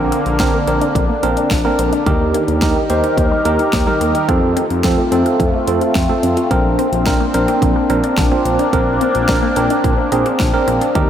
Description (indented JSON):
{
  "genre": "synth-pop",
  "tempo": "108 BPM",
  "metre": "4/4",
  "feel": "straight",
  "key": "unclear",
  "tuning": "A4 = 440 Hz",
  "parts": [
    { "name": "tine electric piano", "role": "accompaniment", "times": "0.0-11.1 s", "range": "C4 to C5", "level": "-18 LUFS", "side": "right 2 dB", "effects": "overdrive, medium stereo tremolo" },
    { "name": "sweeping resonant pad", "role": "sustained chords", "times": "0.0-11.1 s", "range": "D3 to Bb4", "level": "-18 LUFS", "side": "left 1 dB", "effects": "chorus, phaser" },
    { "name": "smooth gliding synth bass", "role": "bass", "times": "0.0-11.1 s", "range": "Bb1 to F2", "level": "-21 LUFS", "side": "equal", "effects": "none" },
    { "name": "resonant blip pluck", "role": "arpeggios", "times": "0.1-11.0 s", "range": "D3 to F4", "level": "-24 LUFS", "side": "left 2 dB", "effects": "none" },
    { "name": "pop drum kit", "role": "drums", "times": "0.1-11.1 s", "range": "hi-hat, kick drum, snare drum", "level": "-20 LUFS", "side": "equal", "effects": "none" }
  ],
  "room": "wet cathedral reverb, RT60 6.4 s",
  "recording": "dreamy mix soaked in reverb",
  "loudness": "-13 LUFS",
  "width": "side -9 dB against mid",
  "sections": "0.0-11.1 A section",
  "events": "none",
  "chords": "0.0 Bbadd9; 2.1 Eb; 4.3 F; 6.5 Bbadd9",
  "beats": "0.40 0.95 1.51 | 2.06 2.62 3.18 3.73 | 4.29 4.84 5.40 5.95 | 6.51 7.07 7.62 8.18 | 8.73 9.29 9.84 10.40 | 10.95"
}